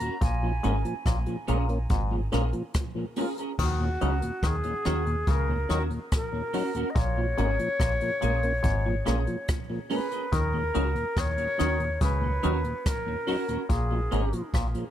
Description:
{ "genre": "roots reggae", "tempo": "71 BPM", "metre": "4/4", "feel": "straight", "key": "Eb minor", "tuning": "A4 = 440 Hz", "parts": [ { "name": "concert flute", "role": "melody", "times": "0.0-14.5 s", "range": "F4 to Bb5", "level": "-31 LUFS", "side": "left 1 dB", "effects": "tape echo" }, { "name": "clean electric guitar", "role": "accompaniment", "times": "0.0-14.3 s", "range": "Db4 to Bb4", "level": "-35 LUFS", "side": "right 3 dB", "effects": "ensemble chorus, tape echo" }, { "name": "mellow tonewheel organ", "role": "accompaniment", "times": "0.0-14.8 s", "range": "Eb2 to Eb4", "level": "-34 LUFS", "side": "equal", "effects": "overdrive, chorus vibrato, slow rotary speaker, tube saturation, tape echo" }, { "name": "jazz brush drum kit", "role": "drums", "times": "0.0-14.9 s", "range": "crash cymbal, hi-hat, kick drum, rim click", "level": "-30 LUFS", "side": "equal", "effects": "none" }, { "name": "clav", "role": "riff", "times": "0.2-14.7 s", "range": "Ab2 to Eb3", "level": "-35 LUFS", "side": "left 6 dB", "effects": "none" }, { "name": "deep dub fingered electric bass", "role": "bass", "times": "0.2-14.7 s", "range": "Ab1 to Eb2", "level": "-27 LUFS", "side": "equal", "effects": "none" } ], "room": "light reverb", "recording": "none", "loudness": "-25 LUFS", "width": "side -11 dB against mid", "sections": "0.0-3.6 A section; 3.6-14.9 A section", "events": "none", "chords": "0.2 Bbm7; 3.6 Ebm7; 7.0 Bbm7; 10.3 Ebm7; 13.7 Bbm7", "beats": "| 0.22 1.06 1.90 2.74 | 3.59 4.43 5.27 6.11 | 6.96 7.80 8.64 9.48 | 10.33 11.17 12.01 12.86 | 13.70 14.54" }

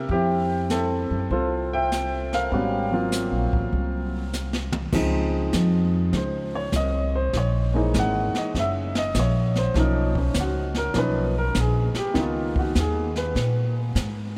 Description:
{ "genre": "jazz piano trio", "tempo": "99 BPM", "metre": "4/4", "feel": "swing 67% on 8ths", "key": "Db major from 4.9 s", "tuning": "A4 = 444 Hz", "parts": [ { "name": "warm upright piano", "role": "melody", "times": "0.0-13.7 s", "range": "Eb3 to G5", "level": "-28 LUFS", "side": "equal", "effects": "analog delay" }, { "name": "upright bass", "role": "bass", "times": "0.0-14.4 s", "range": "Gb1 to Bb2", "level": "-27 LUFS", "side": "equal", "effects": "none" }, { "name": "jazz brush drum kit", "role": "drums", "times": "0.1-14.4 s", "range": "brushed snare drum, crash cymbal, hi-hat, kick drum, snare drum, toms", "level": "-32 LUFS", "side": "equal", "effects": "none" } ], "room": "moderate cathedral reverb, RT60 5.8 s", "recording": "dreamy mix soaked in reverb", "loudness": "-24 LUFS", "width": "mono", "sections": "0.0-4.9 A section; 4.9-14.4 B section", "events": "drum fill 4.3-4.9; upright piano solo 4.9-14.4", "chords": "0.1 Fmaj7; 2.5 Ab13; 4.9 Dbmaj9; 7.3 Gb13; 9.8 Cbmaj9#11; 12.2 Dbsus2", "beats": "| 0.08 0.69 1.29 1.90 | 2.50 3.11 3.71 4.32 | 4.92 5.53 6.13 6.74 | 7.34 7.94 8.54 9.15 | 9.75 10.35 10.95 11.55 | 12.15 12.76 13.36 13.96" }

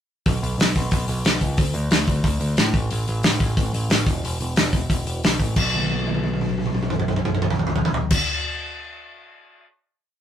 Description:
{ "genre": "punk rock", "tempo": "181 BPM", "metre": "4/4", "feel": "straight", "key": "unclear", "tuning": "A4 = 439 Hz", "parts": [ { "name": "growling picked electric bass", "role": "bass", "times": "0.3-8.1 s", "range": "E1 to A2", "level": "-24 LUFS", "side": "equal", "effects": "overdrive" }, { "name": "loose indie drum kit", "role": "drums", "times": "0.3-9.7 s", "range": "crash cymbal, hi-hat, kick drum, snare drum, toms", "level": "-20 LUFS", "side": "equal", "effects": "none" } ], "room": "light reverb", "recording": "rough rehearsal-room recording, warm saturation", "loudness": "-19 LUFS", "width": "side -10 dB against mid", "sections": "0.3-5.6 verse; 5.6-8.2 final note", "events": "drum fill 5.7-8.1", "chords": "none", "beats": "| 0.26 0.59 0.92 1.25 | 1.58 1.92 2.25 2.58 | 2.91 3.24 3.57 3.91 | 4.24 4.57 4.90 5.23 | 5.56 5.89 6.22 6.55 | 6.88 7.21 7.54 7.87" }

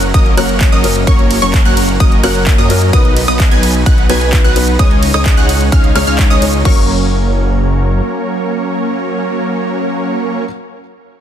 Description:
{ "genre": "EDM, festival progressive house", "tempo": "129 BPM", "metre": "4/4", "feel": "straight", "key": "F# major", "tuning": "A4 = 438 Hz", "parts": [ { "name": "felt-muted upright piano", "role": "accompaniment", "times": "0.0-11.2 s", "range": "F#3 to C#5", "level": "-21 LUFS", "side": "left 4 dB", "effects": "sidechain pumping, ping-pong delay" }, { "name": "wide unison pluck", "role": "arpeggios", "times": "0.0-10.4 s", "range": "C#6 to G#6", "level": "-20 LUFS", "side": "right 1 dB", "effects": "sidechain pumping, ping-pong delay" }, { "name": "supersaw stab", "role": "riff", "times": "0.0-10.4 s", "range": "F#3 to G#5", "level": "-16 LUFS", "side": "right 1 dB", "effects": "sidechain pumping, ping-pong delay" }, { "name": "wide detuned saw bass", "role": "bass", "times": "0.0-8.0 s", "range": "F#1 to F#2", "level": "-16 LUFS", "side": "equal", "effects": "chorus, tube saturation, sidechain pumping" }, { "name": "big-room dance drum kit", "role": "drums", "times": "0.0-6.7 s", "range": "crash cymbal, handclaps, hi-hat, ride cymbal, rim click", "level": "-20 LUFS", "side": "right 1 dB", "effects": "none" }, { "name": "electronic kick drum", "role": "drums", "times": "0.1-6.7 s", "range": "none", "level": "-10 LUFS", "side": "equal", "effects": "none" } ], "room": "digital ambience", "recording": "dense, heavily limited modern master", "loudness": "-10 LUFS", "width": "side -10 dB against mid", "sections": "0.0-6.7 A section; 6.7-10.4 B section", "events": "drop 0.0-6.7", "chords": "0.0 F#; 2.9 B; 4.8 C#sus2; 6.7 F#", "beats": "0.14 0.61 | 1.07 1.54 2.00 2.47 | 2.93 3.40 3.86 4.33 | 4.79 5.26 5.72 6.19 | 6.65 7.12 7.58 8.05 | 8.51 8.98 9.44 9.91" }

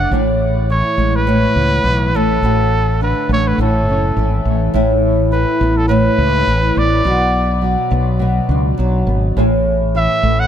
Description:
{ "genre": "acoustic pop", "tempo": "104 BPM", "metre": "4/4", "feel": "swing 55% on 16ths", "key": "A major", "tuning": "A4 = 440 Hz", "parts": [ { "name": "warm trumpet", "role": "melody", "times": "0.0-10.5 s", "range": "A4 to F#5", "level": "-19 LUFS", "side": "right 2 dB", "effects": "ping-pong delay" }, { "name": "nylon-string guitar", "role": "accompaniment", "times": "0.0-10.5 s", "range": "A2 to G#4", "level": "-16 LUFS", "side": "equal", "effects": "double-tracked left and right" }, { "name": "mellow fretless electric bass", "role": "bass", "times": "0.0-10.5 s", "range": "F#1 to C#2", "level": "-17 LUFS", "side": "equal", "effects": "none" } ], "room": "light reverb, small room ambience", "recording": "none", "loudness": "-13 LUFS", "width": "side -9 dB against mid", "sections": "0.0-4.7 A section; 4.7-10.5 A section", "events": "none", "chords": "0.1 E/A; 2.1 D/A; 3.6 A6; 4.7 Aadd9; 7.0 Bm; 9.4 E/A", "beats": "| 0.12 0.69 1.27 1.85 | 2.43 3.00 3.58 4.16 | 4.74 5.32 5.89 6.47 | 7.05 7.63 8.21 8.79 | 9.36 9.94" }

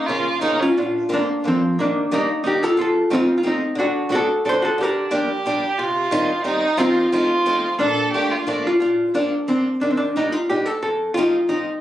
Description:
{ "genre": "musette waltz", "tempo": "179 BPM", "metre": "3/4", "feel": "straight", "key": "Bb major", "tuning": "A4 = 438 Hz", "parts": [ { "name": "archtop guitar, miked and amplified", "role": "melody", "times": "0.0-11.8 s", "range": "F3 to C5", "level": "-19 LUFS", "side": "equal", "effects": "none" }, { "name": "rich violin", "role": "second line", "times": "0.0-0.8, 4.8-8.8 s", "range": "Db4 to A4", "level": "-21 LUFS", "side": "right 2 dB", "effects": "none" }, { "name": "picked swing-style acoustic guitar", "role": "accompaniment", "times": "0.1-11.7 s", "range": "F2 to Eb4", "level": "-25 LUFS", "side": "equal", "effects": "none" } ], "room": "light reverb", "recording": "recorded on a phone in the room, club reverb, compression", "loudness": "-17 LUFS", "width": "side -13 dB against mid", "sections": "0.8-8.8 A section; 8.8-11.8 A section", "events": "none", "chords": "0.0 Bbm; 0.8 Bbadd9; 1.8 Ebmaj7; 2.8 F7; 3.8 D7; 4.8 Gm7/D; 5.8 Cm; 6.8 F7sus4; 7.1 F7; 7.8 Bbmaj7; 8.8 Bbadd9; 9.8 Ebmaj7; 10.8 F7", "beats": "0.09 0.43 | 0.77 1.10 1.44 | 1.77 2.10 2.44 | 2.77 3.11 3.44 | 3.78 4.11 4.45 | 4.79 5.12 5.46 | 5.79 6.13 6.46 | 6.79 7.13 7.46 | 7.80 8.14 8.48 | 8.82 9.16 9.49 | 9.83 10.17 10.51 | 10.84 11.18 11.52" }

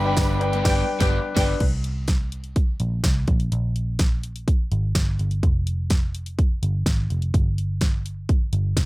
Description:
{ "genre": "piano-driven pop", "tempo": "126 BPM", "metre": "4/4", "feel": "straight", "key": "unclear", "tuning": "A4 = 440 Hz", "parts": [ { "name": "warm studio violin section", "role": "second line", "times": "0.0-1.5 s", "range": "G4 to B5", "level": "-30 LUFS", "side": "right 1 dB", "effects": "none" }, { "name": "warm concert grand piano", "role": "accompaniment", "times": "0.0-1.6 s", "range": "G2 to G5", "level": "-24 LUFS", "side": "left 4 dB", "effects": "none" }, { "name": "crunchy overdriven guitar", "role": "riff", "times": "0.0-1.5 s", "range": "G3 to G4", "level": "-31 LUFS", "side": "right 3 dB", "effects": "spring reverb" }, { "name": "vintage muted picked electric bass", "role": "bass", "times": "0.0-8.9 s", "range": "F1 to C2", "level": "-24 LUFS", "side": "equal", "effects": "none" }, { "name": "house drum kit", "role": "drums", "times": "0.2-8.9 s", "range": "crash cymbal, hi-hat, kick drum, snare drum", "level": "-21 LUFS", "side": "equal", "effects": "none" } ], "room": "little or no reverb", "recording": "none", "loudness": "-20 LUFS", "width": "side -20 dB against mid", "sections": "0.0-1.6 A section; 1.6-8.9 B section", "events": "band accent 0.7-1.6", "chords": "0.0 G; 1.6 Bbsus2; 3.3 Gm; 5.4 N.C.", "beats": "0.17 0.65 1.13 | 1.60 2.08 2.56 3.04 | 3.52 4.00 4.47 4.95 | 5.43 5.91 6.38 6.86 | 7.34 7.82 8.30 8.77" }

